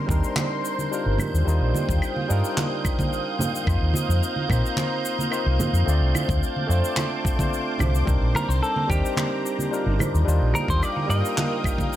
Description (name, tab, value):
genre	sunset chillout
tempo	109 BPM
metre	4/4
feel	straight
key	unclear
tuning	A4 = 442 Hz
part	barky tine electric piano	accompaniment	0.0-12.0 s	G3 to D5	-28 LUFS	equal	auto-pan, digital delay
part	lush unison pad	sustained chords	0.0-12.0 s	Bb4 to Eb6	-30 LUFS	equal	chorus, phaser
part	wind-like tuned noise texture	texture	0.0-12.0 s	G6	-35 LUFS	right 5 dB	built-in reverb
part	fingered electric bass	bass	0.1-11.2 s	G1 to Bb2	-21 LUFS	equal	tube saturation
part	cabasa, claves and handclaps	drums	0.1-12.0 s	none	-32 LUFS	left 1 dB	none
part	electronic kick drum	drums	0.1-11.9 s	none	-25 LUFS	equal	none
part	congas	percussion	0.4-11.9 s	none	-29 LUFS	right 2 dB	none
part	semi-hollow electric guitar	melody	8.4-12.0 s	G4 to Eb5	-28 LUFS	equal	digital delay
room	light reverb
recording	none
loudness	-21 LUFS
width	side -13 dB against mid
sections	0.0-12.0 A section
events	none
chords	0.0 Cm9; 1.2 Ebmaj9; 3.7 F7sus4; 5.9 Dm7; 8.1 Cm9; 10.0 Ebmaj9